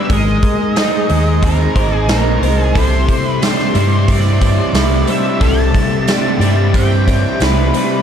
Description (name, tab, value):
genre	rock, shoegaze and dream pop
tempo	90 BPM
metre	4/4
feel	straight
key	C major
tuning	A4 = 441 Hz
part	octave-fuzz lead guitar	melody	0.0-8.0 s	Bb4 to A5	-22 LUFS	left 2 dB	distortion, digital delay
part	ensemble organ-string	sustained chords	0.0-8.0 s	G4 to D6	-25 LUFS	equal	ensemble chorus
part	twelve-string electric guitar	arpeggios	0.0-8.0 s	C4 to Eb5	-25 LUFS	left 13 dB	ensemble chorus, digital delay
part	overdriven electric guitar	riff	0.0-8.0 s	C3 to Bb4	-22 LUFS	left 11 dB	wide subtle chorus
part	raw garage guitar	riff	0.0-8.0 s	C3 to Bb4	-21 LUFS	right 14 dB	overdrive, reverse reverb
part	overdriven fingered electric bass	bass	0.1-7.7 s	Ab1 to G2	-14 LUFS	equal	none
part	big rock drum kit	drums	0.1-7.9 s	hi-hat, kick drum, snare drum	-17 LUFS	right 1 dB	none
part	overdriven electric guitar	riff	2.7-8.0 s	C3 to E4	-22 LUFS	right 1 dB	none
part	tambourine	percussion	2.8-8.0 s	none	-35 LUFS	right 15 dB	none
room	small room ambience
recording	dark, warm production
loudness	-11 LUFS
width	side -8 dB against mid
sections	0.0-8.0 A section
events	none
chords	0.1 Abadd9; 2.8 Cadd9